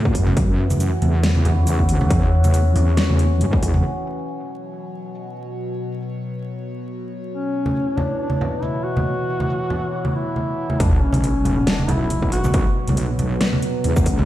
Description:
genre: deep dubstep.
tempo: 138 BPM.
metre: 4/4.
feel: swing 55% on 16ths, half-time.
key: B minor.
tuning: A4 = 440 Hz.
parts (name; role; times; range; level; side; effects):
overtone-sweeping drone; sustained chords; 0.0-14.3 s; B2 to C#5; -26 LUFS; left 1 dB; chorus, built-in reverb.
wobble bass; bass; 0.0-3.8, 10.8-14.3 s; B1 to A2; -18 LUFS; equal; chorus, tube saturation.
dubstep drum kit; drums; 0.1-14.2 s; hi-hat, shaker, snare drum; -26 LUFS; equal; low-pass filter on snare, low-pass filter on hats, low-pass filter on perc.
electronic kick drum; drums; 0.1-3.7, 10.8-14.2 s; none; -20 LUFS; equal; distortion.
congas; percussion; 0.3-3.8, 7.7-14.3 s; none; -24 LUFS; right 1 dB; none.
mellow duduk; melody; 7.3-12.7 s; C#4 to F#4; -25 LUFS; left 1 dB; dub echo.
sub drop; sound effects; 10.8-12.5 s; none; -24 LUFS; equal; none.
room: light reverb.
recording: played on a big sound system in a bare room, stone room reverb, vinyl crackle.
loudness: -17 LUFS.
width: side -14 dB against mid.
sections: 0.0-3.8 A section; 3.8-10.8 B section; 10.8-14.3 C section.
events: drop 10.8-14.3; impact 10.8-12.5.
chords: 0.0 N.C.; 3.8 B5.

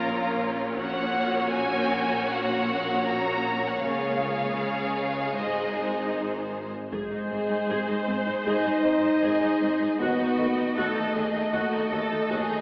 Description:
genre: cinematic, epic orchestral film score.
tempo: 78 BPM.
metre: 4/4.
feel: straight.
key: unclear.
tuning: A4 = 440 Hz.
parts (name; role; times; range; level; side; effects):
rich studio violin section; melody; 0.0-12.6 s; Ab4 to Bb5; -31 LUFS; equal; none.
rich studio violin section; second line; 0.0-12.6 s; F4 to Db5; -30 LUFS; equal; none.
warm symphonic viola section; accompaniment; 0.0-12.6 s; Ab3 to D#5; -30 LUFS; equal; none.
rich symphonic cello section; bass; 0.0-12.6 s; D#2 to Db3; -35 LUFS; equal; none.
rich symphonic double bass section; bass; 0.0-12.4 s; Ab1 to D#2; -36 LUFS; equal; none.
taiko ensemble; drums; 0.8-2.3, 6.9-8.4 s; none; -46 LUFS; equal; none.
mellow French horn section; sustained chords; 6.9-12.6 s; Ab3 to Eb4; -26 LUFS; equal; none.
room: wet concert hall reverb, RT60 2.4 s.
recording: heard from further back in the room, AM radio sound.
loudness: -23 LUFS.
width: side -32 dB against mid.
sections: 0.0-6.9 A section; 6.9-12.6 B section.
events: none.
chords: 0.0 Bbm; 3.8 Db; 5.4 Ab; 10.0 D#dim.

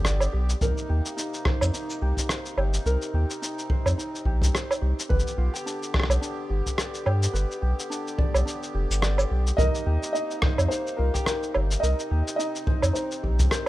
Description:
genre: folktronica.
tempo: 107 BPM.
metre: 4/4.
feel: swing 56% on 16ths.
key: C minor.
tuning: A4 = 442 Hz.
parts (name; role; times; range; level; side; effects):
accordion; sustained chords; 0.0-13.7 s; C3 to G4; -36 LUFS; equal; light tremolo tuning.
ukulele; arpeggios; 0.0-13.7 s; D4 to D5; -34 LUFS; equal; digital delay.
warm sub bass; bass; 0.0-13.5 s; F1 to G2; -23 LUFS; equal; none.
electronic rim click, shaker and woodblock; drums; 0.0-13.7 s; none; -28 LUFS; right 1 dB; none.
kick drum; drums; 0.6-13.5 s; none; -26 LUFS; equal; none.
felt-muted upright piano; melody; 9.6-13.7 s; Bb4 to Eb5; -29 LUFS; equal; digital delay.
room: studio ambience.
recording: rough home demo mix.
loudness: -23 LUFS.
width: side -16 dB against mid.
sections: 0.0-13.7 A section.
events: kick drops out 8.5-9.6.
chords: 0.0 G; 0.6 Cm7; 5.1 G; 9.6 Cm7.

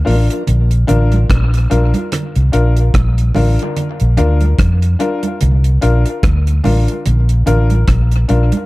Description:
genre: dub reggae.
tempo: 73 BPM.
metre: 4/4.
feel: swing 57% on 16ths.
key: Bb major.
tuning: A4 = 441 Hz.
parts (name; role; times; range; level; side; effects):
warm upright piano; stabs; 0.0-8.6 s; D4 to Bb4; -20 LUFS; left 3 dB; tape echo.
vintage muted fingered electric bass; bass; 0.1-8.5 s; A1 to F2; -12 LUFS; equal; none.
deep reggae drum kit; drums; 0.1-8.7 s; hi-hat, kick drum, rim click; -18 LUFS; equal; none.
congas; percussion; 0.5-8.7 s; none; -23 LUFS; right 3 dB; tape echo.
room: light reverb, small room reverb.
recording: echo-heavy mix.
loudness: -11 LUFS.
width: side -20 dB against mid.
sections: 0.0-8.7 A section.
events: break 0.0-0.5.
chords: 0.0 Bb.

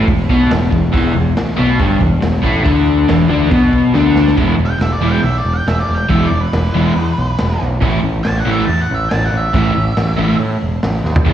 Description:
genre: garage rock duo or trio.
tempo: 139 BPM.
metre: 4/4.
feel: straight.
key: unclear.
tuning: A4 = 441 Hz.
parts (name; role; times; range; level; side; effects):
crunchy overdriven guitar; riff; 0.0-11.3 s; E2 to E4; -14 LUFS; left 1 dB; slapback echo.
growling picked electric bass; bass; 0.0-11.3 s; E1 to A2; -16 LUFS; equal; overdrive.
raw garage drum kit; drums; 0.1-11.3 s; crash cymbal, hi-hat, kick drum, snare drum, toms; -19 LUFS; equal; none.
octave-fuzz lead guitar; melody; 4.7-10.4 s; B4 to A5; -21 LUFS; right 1 dB; distortion, slapback echo.
room: light reverb, small room ambience.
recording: live gig heard through the venue's PA, cassette tape, recital hall reverb.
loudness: -12 LUFS.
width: side -10 dB against mid.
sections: 0.0-4.4 A section; 4.4-11.3 B section.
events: drum fill 3.9-4.4, 11.0; lead electric guitar solo 4.4-11.3.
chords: 0.0 E5; 4.4 E; 7.8 A.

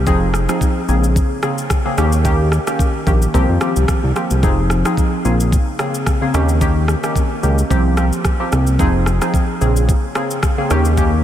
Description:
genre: afrobeats.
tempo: 110 BPM.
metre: 4/4.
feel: swing 55% on 16ths.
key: F minor.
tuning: A4 = 441 Hz.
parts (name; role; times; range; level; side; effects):
fat analog bass; bass; 0.0-11.2 s; F1 to F2; -15 LUFS; equal; none.
glassy wavetable pluck; accompaniment; 0.1-11.2 s; Db3 to Ab4; -18 LUFS; equal; chorus.
afro-pop drum kit; drums; 0.1-11.1 s; kick drum, rim click, shaker; -19 LUFS; equal; none.
room: moderate huge ambient reverb, RT60 4.3 s.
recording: dreamy mix soaked in reverb, faint mains hum.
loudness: -14 LUFS.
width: side -11 dB against mid.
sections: 0.0-11.2 A section.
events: none.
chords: 0.1 Fm7; 0.9 Bbm9; 2.0 Eb7; 3.3 C7sus4; 4.4 Fm7; 5.2 Bbm9; 6.3 Eb7; 7.7 C7sus4; 8.8 Fm7; 9.6 Bbm9; 10.7 Eb7.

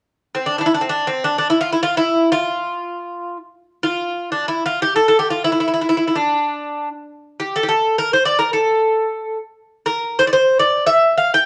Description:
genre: turkish.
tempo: free time.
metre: none.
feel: none.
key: D makam nihavent.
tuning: A4 = 440 Hz.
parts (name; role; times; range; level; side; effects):
Greek bouzouki; melody; 0.3-11.5 s; C4 to G5; -18 LUFS; equal; none.
room: wet studio reverb, RT60 0.8 s.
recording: none.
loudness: -18 LUFS.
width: mono.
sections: 0.1-11.5 A section.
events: none.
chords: none.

